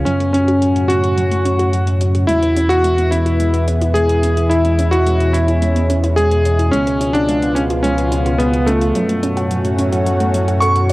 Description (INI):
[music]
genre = synthwave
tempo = 108 BPM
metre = 4/4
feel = straight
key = unclear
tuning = A4 = 440 Hz
[part]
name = warm electric grand piano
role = melody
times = 0.0-10.9 s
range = A3 to C#6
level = -17 LUFS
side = equal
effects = tape echo
[part]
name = lush unison pad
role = sustained chords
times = 0.0-10.9 s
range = A2 to F#4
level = -20 LUFS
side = equal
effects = chorus, cassette tape
[part]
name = warbly dusty pluck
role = arpeggios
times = 0.0-10.9 s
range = F#3 to C#5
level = -25 LUFS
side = right 1 dB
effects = chorus, cassette tape, tape echo
[part]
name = chorused synth bass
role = bass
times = 0.0-10.9 s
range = C#2 to F#2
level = -17 LUFS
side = equal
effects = tube saturation
[part]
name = electronic hi-hat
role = drums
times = 0.1-10.9 s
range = none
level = -33 LUFS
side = equal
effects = overdrive, low-pass filter on hats, low-pass filter on cymbals, low-pass filter on room
[sound]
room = moderate spring reverb, RT60 2.1 s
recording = home recording on cassette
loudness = -13 LUFS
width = side -19 dB against mid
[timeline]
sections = 0.0-10.9 A section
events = filter sweep on analog synth pad 0.0-10.9; filter sweep on synth arpeggio sound 0.0-10.9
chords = 0.1 F#m; 2.3 E6; 6.7 C#7; 9.0 F#m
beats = | 0.06 0.62 1.18 1.73 | 2.29 2.84 3.40 3.95 | 4.51 5.06 5.62 6.17 | 6.73 7.29 7.84 8.40 | 8.95 9.51 10.06 10.62